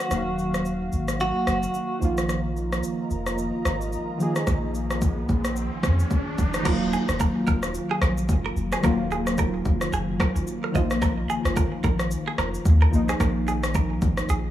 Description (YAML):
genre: afrobeats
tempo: 110 BPM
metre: 4/4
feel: swing 58% on 16ths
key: Eb minor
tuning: A4 = 439 Hz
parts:
  - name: direct-recorded clean electric guitar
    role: melody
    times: 0.0-2.0 s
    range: Gb4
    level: -29 LUFS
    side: right 1 dB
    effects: tremolo, tape echo
  - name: warm analog keys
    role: accompaniment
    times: 0.0-14.5 s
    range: Eb3 to F5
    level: -27 LUFS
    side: equal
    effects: chorus
  - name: deep house drum kit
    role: drums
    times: 0.0-14.4 s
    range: crash cymbal, kick drum, rim click, shaker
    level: -26 LUFS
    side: equal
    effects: none
  - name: punchy sub bass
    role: bass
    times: 0.1-14.5 s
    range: Eb1 to F2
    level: -26 LUFS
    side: equal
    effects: none
  - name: warm analog pad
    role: sustained chords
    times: 2.3-6.6 s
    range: F4 to Bb5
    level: -35 LUFS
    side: right 2 dB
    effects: chorus
  - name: riser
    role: sound effects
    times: 4.6-6.7 s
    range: none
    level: -35 LUFS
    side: left 1 dB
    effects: none
  - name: direct-recorded clean electric guitar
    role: riff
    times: 6.7-14.4 s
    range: Ab4 to Eb5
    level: -31 LUFS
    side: right 4 dB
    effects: phaser, tape echo
room: light reverb, digital ambience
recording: none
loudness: -22 LUFS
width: side -12 dB against mid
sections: 0.0-6.7 A section; 6.7-14.5 B section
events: riser 4.6-6.7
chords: 0.0 Ebmadd9; 2.0 Bbsus4; 6.7 Ebmadd9; 10.7 Bbsus4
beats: | 0.11 0.66 1.20 1.75 | 2.29 2.84 3.38 3.93 | 4.47 5.02 5.56 6.11 | 6.66 7.20 7.75 8.29 | 8.84 9.38 9.93 10.47 | 11.02 11.56 12.11 12.65 | 13.20 13.75 14.29